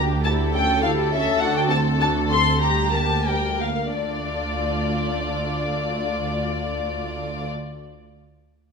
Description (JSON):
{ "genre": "quick classical-period movement for string orchestra", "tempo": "86-105 BPM", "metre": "2/4", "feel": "straight", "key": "D minor", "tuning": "A4 = 440 Hz", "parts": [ { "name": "dark studio violin section", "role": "melody", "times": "0.0-7.5 s", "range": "D5 to C6", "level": "-25 LUFS", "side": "left 3 dB", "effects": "none" }, { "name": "rich studio violin section", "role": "second line", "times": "0.0-7.5 s", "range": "F4 to D5", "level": "-28 LUFS", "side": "left 4 dB", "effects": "none" }, { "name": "dark symphonic viola section", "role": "accompaniment", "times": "0.0-7.5 s", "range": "G3 to Bb4", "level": "-28 LUFS", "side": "right 1 dB", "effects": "none" }, { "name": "dark studio double bass section", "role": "bass", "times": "0.0-7.5 s", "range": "D2", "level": "-28 LUFS", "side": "right 2 dB", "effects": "none" }, { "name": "warm studio cello section", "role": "bass", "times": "0.0-7.5 s", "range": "D2", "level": "-28 LUFS", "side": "right 3 dB", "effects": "none" } ], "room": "wet recital hall reverb, RT60 1.6 s", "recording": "none", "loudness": "-20 LUFS", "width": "side -5 dB against mid", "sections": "0.0-3.9 A section; 3.9-6.7 B section", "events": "slowing down 0.8-3.9", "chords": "0.3 A7/D; 1.4 D7; 2.6 Gm/D; 3.9 Dm" }